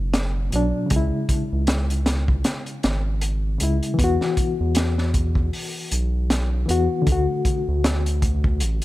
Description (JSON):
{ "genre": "trip hop", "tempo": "78 BPM", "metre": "4/4", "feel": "swing 58% on 16ths", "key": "unclear", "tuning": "A4 = 437 Hz", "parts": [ { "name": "reed electric piano", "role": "accompaniment", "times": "0.0-8.8 s", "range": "B2 to F#4", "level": "-25 LUFS", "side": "left 2 dB", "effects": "overdrive, fast tremolo, harmonic tremolo, tape echo" }, { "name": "round analog bass", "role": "bass", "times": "0.0-8.8 s", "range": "F#1 to E2", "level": "-22 LUFS", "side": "equal", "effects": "tube saturation" }, { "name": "crunchy breakbeat drum kit", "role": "drums", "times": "0.1-8.8 s", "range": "hi-hat, kick drum, snare drum", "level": "-23 LUFS", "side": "equal", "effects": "none" } ], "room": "studio reverb", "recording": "none", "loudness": "-19 LUFS", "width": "side -16 dB against mid", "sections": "0.0-8.8 A section", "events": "none", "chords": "0.0 Bm; 0.9 C#m; 4.0 Esus2; 7.1 D", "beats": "0.14 | 0.91 1.68 2.45 3.22 | 3.99 4.76 5.53 6.29 | 7.06 7.83 8.60" }